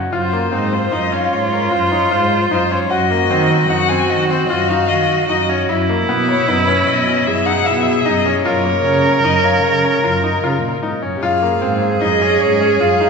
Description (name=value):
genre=contemporary instrumental, chamber music in an uneven meter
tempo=151 BPM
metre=7/4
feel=straight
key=Gb lydian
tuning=A4 = 439 Hz
part: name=clear viola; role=second line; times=0.0-13.1 s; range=Db4 to Bb4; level=-18 LUFS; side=right 2 dB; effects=none
part: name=bright grand piano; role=arpeggios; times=0.0-13.1 s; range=Bb3 to F5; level=-20 LUFS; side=left 2 dB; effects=none
part: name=dark cello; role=bass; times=0.0-13.1 s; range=Gb2 to Eb3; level=-20 LUFS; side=right 2 dB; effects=none
part: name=warm violin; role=melody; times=0.1-13.1 s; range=Bb4 to Ab5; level=-19 LUFS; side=left 5 dB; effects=none
room=wet church reverb, RT60 2.6 s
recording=recorded in a church or concert hall, nothing above 8.0 kHz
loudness=-13 LUFS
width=side -5 dB against mid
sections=0.1-13.1 A section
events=none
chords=0.1 Dbmaj7/Gb; 2.9 Gbmaj7(no3); 5.7 Emaj7/Gb; 8.5 Gbmaj7; 11.2 Dbmaj7/Gb